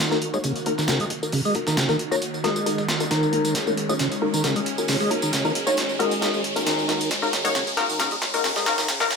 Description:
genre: breakbeat, breaks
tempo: 135 BPM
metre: 4/4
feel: swing 54% on 16ths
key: Eb minor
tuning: A4 = 436 Hz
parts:
  - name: phased analog pad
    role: sustained chords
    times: 0.0-9.2 s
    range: Eb3 to Gb4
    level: -30 LUFS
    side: right 1 dB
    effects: phaser, chorus, sidechain pumping
  - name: tambourine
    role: drums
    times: 0.0-9.1 s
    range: none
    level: -33 LUFS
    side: right 2 dB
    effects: none
  - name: riser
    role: sound effects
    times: 0.3-9.2 s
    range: none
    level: -31 LUFS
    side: equal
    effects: none
  - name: filtered dub chord stab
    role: stabs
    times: 0.1-9.1 s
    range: Bb3 to Db5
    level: -26 LUFS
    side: left 3 dB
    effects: chorus, tape echo
  - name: breakbeat sampler-style drum kit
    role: drums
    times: 0.1-9.2 s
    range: hi-hat, kick drum, snare drum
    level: -26 LUFS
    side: right 1 dB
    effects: overdrive, high-pass filter on hats, high-pass filter on kick, high-pass filter on snare, high-pass filter on room
  - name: percussive tonewheel organ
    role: riff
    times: 0.3-9.1 s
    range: Db3 to Eb4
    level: -26 LUFS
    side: equal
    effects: overdrive, chorus vibrato, slow rotary speaker, tube saturation, low-pass filter, tape echo
room: wet studio reverb, RT60 0.6 s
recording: high-pass filter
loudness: -20 LUFS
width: side -5 dB against mid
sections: 0.0-9.2 A section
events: build-up 0.0-9.2; filter sweep on tonewheel organ 0.0-9.2; filter sweep on synth stab 0.0-9.2; filter sweep 0.0-9.2; riser 0.3-9.2; drum fill 3.1-9.2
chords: 0.0 Ebm

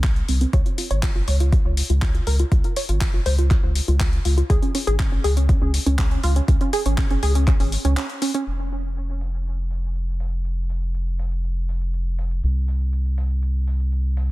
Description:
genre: progressive house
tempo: 121 BPM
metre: 4/4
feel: straight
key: unclear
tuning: A4 = 440 Hz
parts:
  - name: tight sequenced synth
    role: arpeggios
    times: 0.0-8.4 s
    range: C4 to Db5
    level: -26 LUFS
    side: right 1 dB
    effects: chorus, vintage 12-bit sampler grit, sidechain pumping, dub echo
  - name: round analog bass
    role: bass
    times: 0.0-14.3 s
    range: F1 to Db2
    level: -21 LUFS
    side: equal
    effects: sidechain pumping
  - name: deep house drum kit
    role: drums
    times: 0.0-14.3 s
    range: handclaps, hi-hat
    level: -30 LUFS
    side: left 2 dB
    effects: overdrive, sidechain pumping on hats, low-pass filter on hats, low-pass filter on snare, low-pass filter on room
  - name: electronic kick drum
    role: drums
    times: 0.0-7.6 s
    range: none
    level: -20 LUFS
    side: equal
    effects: overdrive
room: little or no reverb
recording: dense, heavily limited modern master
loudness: -19 LUFS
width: side -18 dB against mid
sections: 0.0-8.5 A section; 8.5-14.3 B section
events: filter sweep on synth arpeggio sound 0.0-8.5; break 8.0-8.5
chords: 0.0 C5; 0.5 Bbm7/Ab (rootless); 4.5 Db5; 8.5 N.C.

